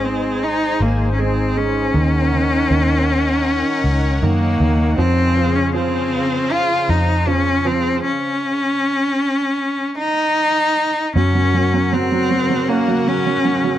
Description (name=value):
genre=pop ballad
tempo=78 BPM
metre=4/4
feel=straight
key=unclear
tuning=A4 = 440 Hz
part: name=clear cello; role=melody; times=0.0-13.8 s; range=Bb3 to F4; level=-18 LUFS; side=left 1 dB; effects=none
part: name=warm grand piano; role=accompaniment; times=0.0-13.8 s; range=Eb3 to Db4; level=-23 LUFS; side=right 6 dB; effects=none
part: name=sweeping resonant pad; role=sustained chords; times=0.0-13.8 s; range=Db3 to Ab5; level=-25 LUFS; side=left 2 dB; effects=chorus
part: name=vintage muted fingered electric bass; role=bass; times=0.0-13.8 s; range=Ab1 to Gb2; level=-19 LUFS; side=equal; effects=none
room=small room ambience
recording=dry, close 1970s-style studio recording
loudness=-15 LUFS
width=side -12 dB against mid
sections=0.0-11.2 A section; 11.2-13.8 B section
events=none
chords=0.0 Ab; 1.9 Ebm7; 5.0 Dbmaj7/F; 8.0 N.C.; 11.2 Gb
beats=0.42 1.19 | 1.95 2.71 3.47 4.23 | 4.98 5.74 6.51 7.27 | 8.04 8.81 9.59 10.37 | 11.15 11.93 12.69 13.45